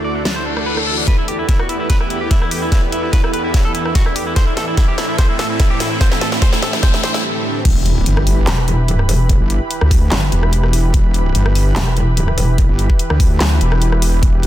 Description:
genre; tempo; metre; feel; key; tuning
heavy wobble dubstep; 146 BPM; 4/4; half-time; E minor; A4 = 439 Hz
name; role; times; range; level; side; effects
clean electric guitar; melody; 0.0-7.2 s; D4 to D5; -23 LUFS; equal; digital delay
supersaw pad; sustained chords; 0.0-14.5 s; D2 to B5; -23 LUFS; right 1 dB; sidechain pumping, low-pass filter
granular cloud pad; texture; 0.0-7.2 s; A3 to G5; -24 LUFS; right 2 dB; built-in reverb, sidechain pumping
dubstep drum kit; drums; 0.3-14.5 s; crash cymbal, handclaps, hi-hat, rim click, snare drum; -22 LUFS; left 1 dB; soft clipping on snare, high-pass filter on snare, small room ambience, high-pass filter on hats, high-pass filter on cymbals
reverse cymbal, riser and impact; sound effects; 0.4-9.3 s; none; -25 LUFS; left 1 dB; none
electronic kick drum; drums; 1.1-14.3 s; none; -14 LUFS; equal; small room ambience
wobble bass; bass; 7.7-14.5 s; E1 to D2; -14 LUFS; equal; chorus, overdrive
metallic wobble bass; bass; 8.5-12.7 s; E1 to G1; -15 LUFS; equal; chorus, overdrive
room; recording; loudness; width
little or no reverb; dense, heavily limited modern master; -13 LUFS; side -13 dB against mid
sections
0.0-1.1 A section; 1.1-7.7 B section; 7.7-14.5 C section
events
filter sweep on drum 0.0-1.1; reverse cymbal 0.4-1.1; build-up 1.1-7.7; drum fill 1.1-7.2; riser 1.1-7.2; break 7.2-7.7; drop 7.7-14.5; impact 7.7-9.3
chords
0.0 D; 1.1 Em; 4.4 Am; 7.7 Em

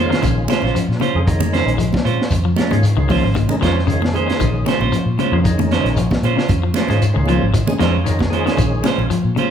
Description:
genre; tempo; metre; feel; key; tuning
afrobeat; 115 BPM; 4/4; swing 54% on 16ths; Bb minor; A4 = 440 Hz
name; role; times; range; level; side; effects
percussive tonewheel organ; accompaniment; 0.0-8.9 s; Eb3 to F5; -25 LUFS; left 1 dB; slow rotary speaker, overdrive, chorus vibrato
semi-hollow electric guitar; arpeggios; 0.0-9.5 s; Db3 to Ab3; -23 LUFS; left 5 dB; none
clean electric guitar; stabs; 0.0-9.5 s; Ab3 to C5; -21 LUFS; right 6 dB; spring reverb
vintage muted fingered electric bass; bass; 0.0-9.3 s; Ab1 to Bb2; -19 LUFS; equal; none
crunchy breakbeat drum kit; drums; 0.1-9.5 s; hi-hat, kick drum, snare drum; -23 LUFS; equal; none
congas; percussion; 0.2-9.5 s; none; -24 LUFS; right 1 dB; none
shekere; percussion; 0.2-9.5 s; none; -26 LUFS; left 3 dB; none
room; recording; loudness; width
moderate large studio reverb, RT60 1.3 s; band playing live in one room; -14 LUFS; side -8 dB against mid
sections
0.0-9.5 A section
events
tonewheel organ fill 0.0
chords
0.0 Bbm9

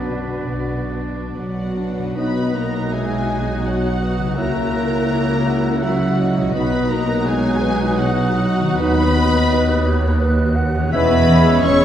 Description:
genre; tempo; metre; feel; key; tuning
classical; 82 BPM; 3/4; uneven beats, rubato; B major; A4 = 441 Hz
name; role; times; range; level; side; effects
dark studio violin section; melody; 0.0-11.8 s; B4 to C#6; -27 LUFS; left 2 dB; none
bright flute section; second line; 0.0-11.8 s; B4 to F#6; -31 LUFS; right 1 dB; none
dark chamber violin section; second line; 0.0-11.8 s; D4 to C#5; -27 LUFS; left 1 dB; none
dark clarinet; second line; 0.0-11.8 s; F#4 to F#5; -27 LUFS; right 2 dB; none
warm oboe; second line; 0.0-11.8 s; C#5 to E5; -31 LUFS; right 2 dB; none
rich chamber viola section; accompaniment; 0.0-11.8 s; B3 to G#4; -28 LUFS; equal; none
warm French horn section; sustained chords; 0.0-11.8 s; F#3 to F#4; -22 LUFS; left 2 dB; none
concert harp; arpeggios; 0.0-11.8 s; B2 to C#5; -29 LUFS; left 3 dB; none
rich symphonic cello section; bass; 0.0-11.8 s; D#2 to C#3; -24 LUFS; right 1 dB; none
warm symphonic double bass section; bass; 0.0-11.8 s; E1 to D#2; -23 LUFS; right 1 dB; none
mellow bassoon; accompaniment; 2.2-11.8 s; F#3 to G#3; -30 LUFS; right 4 dB; none
mellow trombone section; sustained chords; 2.2-11.2 s; E3 to E4; -26 LUFS; right 1 dB; none
room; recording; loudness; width
wet scoring stage reverb, RT60 1.9 s; heard from further back in the room; -16 LUFS; side -10 dB against mid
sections
0.0-2.2 A section; 2.2-11.8 B section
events
none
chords
0.0 Bm; 2.2 B; 4.4 F#7/C#; 6.5 B; 8.8 B/D#; 10.9 C#m7/E

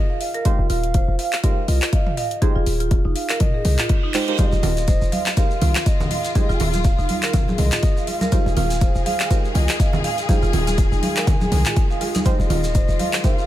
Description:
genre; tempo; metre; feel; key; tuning
afro house; 122 BPM; 4/4; swing 56% on 16ths; F minor; A4 = 436 Hz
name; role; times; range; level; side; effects
bansuri; melody; 0.0-13.5 s; Eb5 to Ab5; -29 LUFS; equal; tape echo
marimba with medium mallets; arpeggios; 0.1-13.4 s; Eb4 to F5; -27 LUFS; right 3 dB; sidechain pumping, tape echo
deep house drum kit; drums; 0.2-13.3 s; handclaps, hi-hat, toms; -26 LUFS; equal; small room ambience
deep mellow chord stab; stabs; 0.5-13.4 s; Ab3 to C5; -29 LUFS; right 5 dB; chorus, cassette tape, sidechain pumping, tape echo
electronic kick drum; drums; 0.5-13.4 s; none; -19 LUFS; equal; overdrive, small room ambience
warm 808-style bass; bass; 0.6-13.0 s; Eb1 to C2; -21 LUFS; equal; tube saturation, sidechain pumping
reverse cymbal; sound effects; 3.8-4.4 s; none; -30 LUFS; right 7 dB; none
warm symphonic string section; sustained chords; 4.4-13.5 s; Eb3 to Ab4; -29 LUFS; left 3 dB; sidechain pumping
congas; percussion; 4.4-13.4 s; none; -26 LUFS; right 1 dB; none
shekere; percussion; 4.4-13.5 s; none; -36 LUFS; right 1 dB; none
room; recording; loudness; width
little or no reverb; none; -17 LUFS; side -13 dB against mid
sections
0.0-13.5 A section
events
reverse cymbal 3.8-4.4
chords
0.0 Fm7

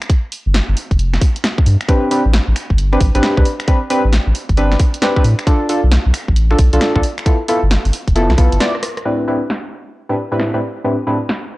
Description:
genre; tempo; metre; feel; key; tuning
UK garage, two-step garage; 134 BPM; 4/4; swing 64% on 16ths; A minor; A4 = 440 Hz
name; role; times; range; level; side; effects
punchy analog drum machine; drums; 0.0-11.4 s; finger snaps, hi-hat, rim click, snare drum; -22 LUFS; equal; low-pass filter on hats, low-pass filter on snare, low-pass filter on room
electronic kick drum; drums; 0.1-8.5 s; none; -14 LUFS; equal; none
saturated sub bass; bass; 0.5-8.6 s; F1 to A2; -13 LUFS; equal; tube saturation
deep mellow chord stab; stabs; 1.9-11.2 s; A2 to D5; -17 LUFS; equal; chorus, tape echo
room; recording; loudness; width
little or no reverb; dry, gritty hardware recording, transformer saturation, cassette tape; -13 LUFS; side -19 dB against mid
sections
0.0-9.1 A section; 9.1-11.6 B section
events
break 8.6-9.1; drum fill 8.6-9.1; band accent 8.9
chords
0.0 Fsus2; 1.9 Am11; 5.5 Bm7b5; 7.0 G13; 9.1 Am11

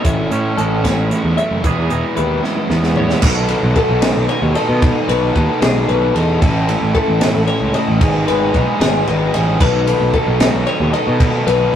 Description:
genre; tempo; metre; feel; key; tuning
math rock and midwest emo; 75 BPM (dotted quarters); 6/8; straight; unclear; A4 = 439 Hz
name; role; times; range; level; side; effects
twangy electric guitar; accompaniment; 0.0-3.2 s; E2 to G#4; -25 LUFS; right 4 dB; tremolo
twelve-string electric guitar; arpeggios; 0.0-11.8 s; G#4 to E5; -20 LUFS; left 5 dB; none
overdriven electric guitar; riff; 0.0-11.8 s; G#2 to A4; -18 LUFS; right 1 dB; none
fuzz picked electric bass; bass; 0.0-11.7 s; E1 to B2; -18 LUFS; equal; overdrive
compact cocktail drum kit; drums; 0.0-11.6 s; crash cymbal, hi-hat, kick drum, ride cymbal, snare drum, toms; -18 LUFS; equal; none
room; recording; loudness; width
moderate studio reverb, RT60 0.6 s; rough rehearsal-room recording; -13 LUFS; side -9 dB against mid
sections
0.0-3.2 A section; 3.2-11.8 B section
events
drum fill 2.4-3.2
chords
0.0 Amaj7; 1.6 Emaj7; 3.2 B7; 6.4 A; 8.0 G#m; 9.6 B9

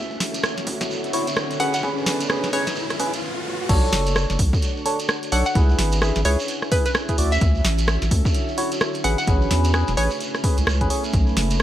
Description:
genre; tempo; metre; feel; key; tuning
UK garage, two-step garage; 129 BPM; 4/4; swing 60% on 16ths; unclear; A4 = 441 Hz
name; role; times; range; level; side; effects
hollow square pluck; melody; 0.0-10.2 s; B4 to F#5; -27 LUFS; equal; chorus, dub echo
soft string machine; sustained chords; 0.0-11.6 s; C#4 to C#5; -35 LUFS; equal; ensemble chorus, sidechain pumping
saturated sub bass; bass; 0.0-11.6 s; E1 to E2; -22 LUFS; equal; high-pass filter
riser; sound effects; 0.0-3.7 s; none; -30 LUFS; equal; none
deep dark ambient pad; texture; 0.0-11.6 s; D3 to G#5; -30 LUFS; equal; chorus, built-in reverb, sidechain pumping
shekere; percussion; 0.1-11.6 s; none; -33 LUFS; right 4 dB; none
punchy analog drum machine; drums; 0.2-11.6 s; crash cymbal, hi-hat, rim click, snare drum; -25 LUFS; right 1 dB; none
electronic kick drum; drums; 0.7-11.2 s; none; -21 LUFS; equal; high-pass filter on kick
percussive organ stab; stabs; 1.1-11.0 s; C#4 to D5; -26 LUFS; equal; chorus
room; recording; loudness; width
light reverb, digital ambience; vinyl crackle; -19 LUFS; side -12 dB against mid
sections
0.0-3.7 A section; 3.7-11.6 B section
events
build-up 0.0-3.7; riser 0.0-3.7; stop 3.2-3.7; drop 3.7-11.6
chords
0.0 Dmaj9; 1.6 Amaj9; 3.7 Bm7; 5.6 C#m7; 7.2 Dmaj9; 9.0 Amaj9

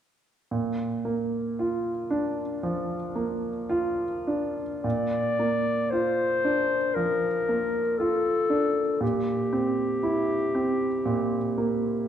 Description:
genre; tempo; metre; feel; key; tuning
classical, romantic duo for clarinet and grand piano; 58 BPM; 4/4; rubato; Bb major; A4 = 438 Hz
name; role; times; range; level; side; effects
warm concert grand piano; accompaniment; 0.5-12.1 s; Bb2 to F4; -27 LUFS; right 2 dB; none
warm clarinet; melody; 4.8-12.1 s; G4 to D5; -26 LUFS; left 3 dB; none
room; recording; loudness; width
moderate concert hall reverb, RT60 1.8 s; dark, warm production; -24 LUFS; side -9 dB against mid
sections
0.5-4.8 A section; 4.8-12.1 B section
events
none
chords
0.5 Bb; 9.0 C7/Bb

